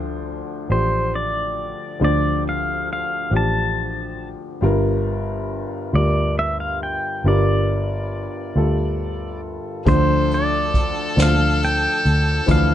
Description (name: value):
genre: acoustic folk-pop ballad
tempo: 46 BPM (dotted quarters)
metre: 6/8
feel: straight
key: D minor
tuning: A4 = 441 Hz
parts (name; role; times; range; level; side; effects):
- clear upright piano; accompaniment; 0.0-12.7 s; G1 to C5; -24 LUFS; left 2 dB; none
- vintage muted fingered electric bass; bass; 0.0-12.7 s; G1 to D2; -21 LUFS; equal; none
- pedal steel guitar; melody; 0.7-12.7 s; C5 to A5; -23 LUFS; equal; none
- rich violin; second line; 9.9-12.7 s; A4; -26 LUFS; left 1 dB; none
- vintage brush drum kit; drums; 9.9-12.7 s; hi-hat, kick drum, snare drum; -22 LUFS; equal; none
room: light reverb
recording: dark, warm production, nothing above 11.0 kHz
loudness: -18 LUFS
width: side -11 dB against mid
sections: 0.0-9.9 A section; 9.9-12.7 B section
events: none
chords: 0.0 Dm7; 4.6 Gm7; 9.9 Dm7